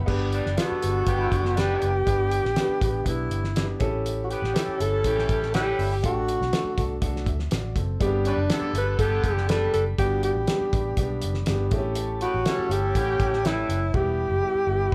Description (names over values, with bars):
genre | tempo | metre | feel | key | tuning
uptempo 1960s-style soul | 121 BPM | 4/4 | straight | unclear | A4 = 439 Hz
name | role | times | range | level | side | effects
mellow tonewheel organ | sustained chords | 0.0-0.1, 8.0-14.9 s | C#5 to B5 | -43 LUFS | equal | slow rotary speaker
electric guitar through a small old amp | riff | 0.0-2.2, 5.7-6.2, 14.9 s | B3 to G4 | -38 LUFS | equal | none
vintage muted fingered electric bass | bass | 0.0-14.9 s | E1 to D2 | -30 LUFS | equal | none
warm concert grand piano | accompaniment | 0.1-14.9 s | G3 to F#5 | -33 LUFS | equal | none
cloth-damped thuddy drum kit | drums | 0.1-14.9 s | crash cymbal, hi-hat, kick drum, snare drum | -31 LUFS | equal | none
warm horn section | second line | 0.3-13.8 s | D3 to B4 | -34 LUFS | equal | none
breathy tenor saxophone | melody | 0.6-14.9 s | D4 to B4 | -28 LUFS | equal | none
room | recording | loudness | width
light reverb | band playing live in one room | -25 LUFS | mono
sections
0.1-14.9 A section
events
drum fill 13.9-14.9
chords
0.1 G; 3.8 A7; 6.0 D/A; 8.0 G; 11.7 A7; 13.9 Em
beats
| 0.08 0.58 1.07 1.57 | 2.07 2.56 3.06 3.56 | 4.05 4.55 5.04 5.54 | 6.04 6.53 7.03 7.52 | 8.01 8.51 9.00 9.50 | 9.99 10.48 10.98 11.47 | 11.96 12.46 12.95 13.44 | 13.94 14.43 14.93